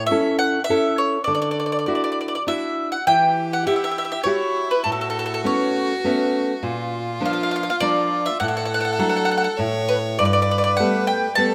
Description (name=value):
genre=italian folk, Italian serenade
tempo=101 BPM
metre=3/4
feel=swing 55% on 8ths, rubato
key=D major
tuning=A4 = 443 Hz
part: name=bowl-back mandolin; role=melody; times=0.0-11.5 s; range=A4 to A5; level=-24 LUFS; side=equal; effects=none
part: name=nylon-string guitar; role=accompaniment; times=0.0-11.5 s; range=G2 to F#5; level=-25 LUFS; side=equal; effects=none
part: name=clear violin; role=second line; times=3.1-11.5 s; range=E4 to C#5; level=-29 LUFS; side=equal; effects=none
room=moderate lush hall reverb, RT60 2.4 s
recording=rough home demo mix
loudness=-21 LUFS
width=mono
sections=0.0-11.5 A section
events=none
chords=0.0 A; 1.3 Dadd9; 3.1 Emadd9; 4.9 Aadd9; 6.6 Bb; 8.4 D/A; 9.6 N.C.; 10.2 Gadd9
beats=0.10 0.69 | 1.28 1.88 2.48 | 3.08 3.67 4.27 | 4.87 5.46 6.05 | 6.64 7.23 7.81 | 8.40 8.99 9.59 | 10.19 10.79 11.38